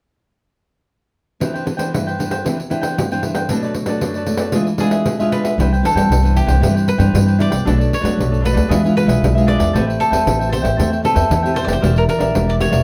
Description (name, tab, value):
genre	samba and choro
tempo	115 BPM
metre	4/4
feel	straight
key	C major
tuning	A4 = 440 Hz
part	cavaquinho	accompaniment	1.4-12.8 s	D4 to G5	-26 LUFS	equal	none
part	nylon-string guitar	accompaniment	1.4-12.8 s	F#2 to B4	-23 LUFS	equal	none
part	pandeiro	percussion	1.4-12.8 s	none	-25 LUFS	equal	none
part	cavaquinho	melody	4.8-12.8 s	G4 to D5	-24 LUFS	equal	none
part	upright bass	bass	5.6-12.8 s	E1 to G2	-19 LUFS	equal	none
room	moderate studio reverb, RT60 0.6 s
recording	heard from further back in the room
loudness	-17 LUFS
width	mono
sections	1.4-5.6 A section; 5.6-12.8 B section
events	none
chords	1.4 Cmaj9; 3.5 Bm7; 4.5 E7b9; 5.6 Cmaj9; 7.7 Bm7; 8.7 E7b9; 9.7 Am9; 11.8 Em7b5